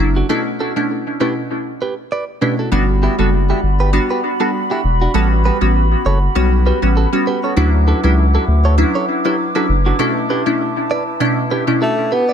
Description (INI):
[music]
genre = afrobeats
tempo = 99 BPM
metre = 4/4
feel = swing 55% on 16ths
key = unclear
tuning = A4 = 441 Hz
[part]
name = glassy wavetable pluck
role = accompaniment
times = 0.0-11.9 s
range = B2 to F#4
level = -18 LUFS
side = equal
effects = chorus, analog delay
[part]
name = saturated sub bass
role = bass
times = 0.0-9.9 s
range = E1 to D2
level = -14 LUFS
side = equal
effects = none
[part]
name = direct-recorded clean electric guitar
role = riff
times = 0.2-12.3 s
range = D4 to D5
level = -23 LUFS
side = right 4 dB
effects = analog delay
[part]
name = mellow large flute ensemble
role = sustained chords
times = 2.7-12.3 s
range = E4 to D6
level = -23 LUFS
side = equal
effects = none
[part]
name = breathy tenor saxophone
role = melody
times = 11.8-12.3 s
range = A3 to B3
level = -15 LUFS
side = equal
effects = analog delay
[sound]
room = light reverb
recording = echo-heavy mix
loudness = -14 LUFS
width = side -8 dB against mid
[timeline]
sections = 0.0-2.7 A section; 2.7-12.3 B section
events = break 0.3-2.7, 10.0-12.3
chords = 0.3 Bm11; 2.7 Gmaj7; 5.1 A13; 7.6 Dmaj9; 10.0 Bm11